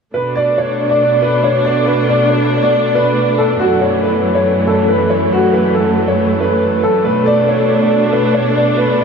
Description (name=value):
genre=hip hop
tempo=139 BPM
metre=4/4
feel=half-time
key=B minor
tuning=A4 = 441 Hz
part: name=dark concert grand piano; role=melody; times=0.1-9.0 s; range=F#4 to D5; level=-14 LUFS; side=equal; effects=lush chorus, ping-pong delay
part: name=dark chamber string section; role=sustained chords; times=0.1-9.0 s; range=F#2 to D4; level=-15 LUFS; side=right 1 dB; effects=none
room=wet huge ambient reverb, RT60 7.3 s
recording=dreamy mix soaked in reverb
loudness=-11 LUFS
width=side -6 dB against mid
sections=0.1-9.0 A section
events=none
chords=0.1 Bm7; 3.6 F#m7; 7.0 Bm7